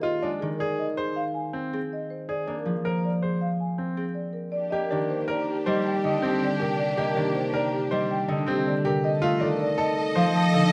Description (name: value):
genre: classical, minimalist pattern music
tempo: 160 BPM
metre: 6/4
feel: straight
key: Eb lydian from 4.5 s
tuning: A4 = 440 Hz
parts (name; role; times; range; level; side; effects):
- marimba with medium mallets; melody; 0.0-10.7 s; G4 to A5; -31 LUFS; equal; none
- concert harp; accompaniment; 0.0-10.7 s; C3 to C4; -30 LUFS; equal; none
- bright baby grand piano; arpeggios; 0.0-10.7 s; C4 to C5; -32 LUFS; equal; none
- rich studio string section; sustained chords; 4.5-10.7 s; D4 to Eb5; -34 LUFS; equal; none
room: light reverb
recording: close, detailed microphones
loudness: -26 LUFS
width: mono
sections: 0.0-4.5 A section; 4.5-10.7 B section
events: none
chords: 0.0 Fm7 (rootless); 2.3 Bb7; 4.5 Ebmaj7; 9.0 F7